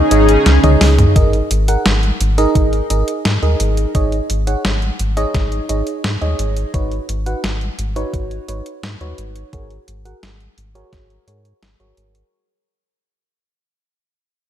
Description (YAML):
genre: synthwave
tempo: 86 BPM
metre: 4/4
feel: straight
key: G# minor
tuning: A4 = 440 Hz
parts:
  - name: chorused pulse-width pad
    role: sustained chords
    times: 0.0-1.1 s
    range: C#3 to G#4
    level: -16 LUFS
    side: equal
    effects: vintage 12-bit sampler grit, sidechain pumping
  - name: FM electric piano with soft pad layer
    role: stabs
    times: 0.0-12.3 s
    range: D#4 to F#5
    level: -20 LUFS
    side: right 2 dB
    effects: chorus, low-pass filter, ping-pong delay
  - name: round analog bass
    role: bass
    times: 0.0-12.2 s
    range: G#1 to G#2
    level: -17 LUFS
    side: equal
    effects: none
  - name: detuned 8-bit digital drum machine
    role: drums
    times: 0.1-12.3 s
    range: hi-hat, snare drum, toms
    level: -20 LUFS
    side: equal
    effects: none
  - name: electronic kick drum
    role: drums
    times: 1.2-11.1 s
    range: none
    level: -17 LUFS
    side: equal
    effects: overdrive
room: light reverb, digital ambience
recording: none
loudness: -14 LUFS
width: side -10 dB against mid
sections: 0.0-1.2 A section; 1.2-12.3 B section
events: drum fill 0.5-1.2; fade-out 1.2-12.3; filter sweep on FM electric piano 1.2-12.3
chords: 0.0 C#sus2; 1.2 G#sus2; 3.9 C#sus2/G#; 6.7 Badd9/G#; 9.5 F#add9/G#